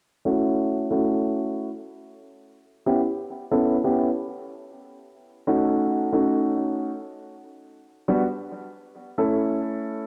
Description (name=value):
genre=glitch hop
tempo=free time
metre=none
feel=none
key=F# phrygian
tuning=A4 = 440 Hz
part: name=warm baby grand piano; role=stabs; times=0.3-10.1 s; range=G3 to A4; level=-25 LUFS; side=equal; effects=vintage 12-bit sampler grit, low-pass filter, cassette tape, tape echo
room=moderate spring reverb, RT60 2.4 s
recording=home recording on cassette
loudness=-24 LUFS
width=mono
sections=0.0-10.1 A section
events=filter sweep on grand piano 0.0-10.1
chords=0.0 F#m7; 1.7 A9; 4.3 F#m6/A; 6.9 N.C.; 9.5 F#m7 (rootless)